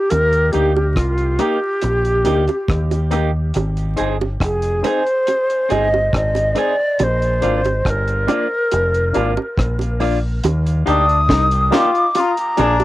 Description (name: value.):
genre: roots reggae.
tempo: 70 BPM.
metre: 4/4.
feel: straight.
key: Eb major.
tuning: A4 = 441 Hz.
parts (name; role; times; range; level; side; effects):
breathy mellow silver concert flute; melody; 0.0-12.8 s; F4 to Eb6; -18 LUFS; equal; cassette tape, dub echo.
deep dub fingered electric bass; bass; 0.1-12.8 s; F1 to Eb2; -19 LUFS; equal; none.
deep reggae drum kit; drums; 0.1-12.8 s; hi-hat, kick drum, rim click, snare drum; -21 LUFS; equal; tape echo.
bongos; percussion; 0.1-12.8 s; none; -22 LUFS; right 5 dB; none.
clean electric guitar; accompaniment; 0.5-12.8 s; Bb3 to Ab4; -27 LUFS; right 6 dB; cassette tape, dub echo.
reed electric piano; stabs; 0.5-12.7 s; Bb3 to D5; -22 LUFS; left 6 dB; overdrive, cassette tape.
brilliant trombone; second line; 10.9-12.8 s; D4 to F4; -19 LUFS; left 5 dB; cassette tape, dub echo.
room: moderate booth ambience, RT60 0.2 s.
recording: home recording on cassette, vinyl crackle.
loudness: -15 LUFS.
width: side -16 dB against mid.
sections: 0.0-10.4 A section; 10.4-12.8 B section.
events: none.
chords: 0.0 Eb; 3.6 Ab; 7.0 Bb; 10.4 Ebmaj7; 12.1 Bb7.